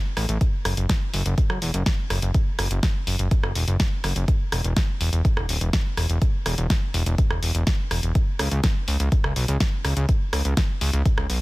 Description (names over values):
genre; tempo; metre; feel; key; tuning
progressive house; 124 BPM; 4/4; straight; F# minor; A4 = 440 Hz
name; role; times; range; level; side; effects
fat analog bass; bass; 0.2-11.4 s; D1 to C#2; -22 LUFS; equal; sidechain pumping
deep house drum kit; drums; 0.2-11.4 s; hi-hat, rim click, snare drum; -28 LUFS; equal; sidechain pumping on hats, soft clipping on snare
electronic kick drum; drums; 0.4-11.2 s; none; -22 LUFS; equal; none
room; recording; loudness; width
little or no reverb; dense, heavily limited modern master; -20 LUFS; side -20 dB against mid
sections
0.0-11.4 A section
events
none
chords
none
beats
| 0.41 0.89 1.38 1.86 | 2.35 2.83 3.31 3.80 | 4.28 4.76 5.25 5.73 | 6.22 6.70 7.18 7.67 | 8.15 8.64 9.12 9.60 | 10.09 10.57 11.05